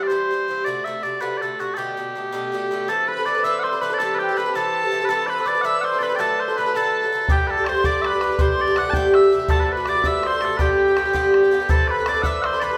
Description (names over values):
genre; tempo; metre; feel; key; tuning
celtic folk, Celtic jig; 109 BPM (dotted quarters); 6/8; straight; unclear; A4 = 440 Hz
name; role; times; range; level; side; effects
mellow small bagpipes; melody; 0.0-12.8 s; F#4 to A5; -25 LUFS; equal; none
Irish bouzouki; accompaniment; 0.0-12.8 s; G2 to B4; -25 LUFS; equal; none
bright wooden whistle; second line; 2.9-12.8 s; G5 to G6; -30 LUFS; equal; none
hammered dulcimer; second line; 2.9-12.8 s; G4 to G5; -28 LUFS; equal; none
bodhran; percussion; 7.3-12.7 s; none; -26 LUFS; equal; none
room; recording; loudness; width
wet large studio reverb, RT60 1.3 s; band playing live in one room; -20 LUFS; mono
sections
0.0-2.9 A section; 2.9-11.7 B section; 11.7-12.8 B section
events
none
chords
0.0 C; 0.7 D7; 1.8 Gadd9; 2.9 Amadd9; 4.0 C6; 5.1 Amadd9; 6.2 D; 7.3 Dsus4; 8.4 Am7; 9.5 D7; 10.6 G; 11.7 Amadd9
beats
0.10 | 0.65 1.21 | 1.77 2.33 | 2.88 3.44 | 3.99 4.54 | 5.09 5.64 | 6.20 6.75 | 7.30 7.85 | 8.40 8.95 | 9.50 10.05 | 10.60 11.15 | 11.70 12.24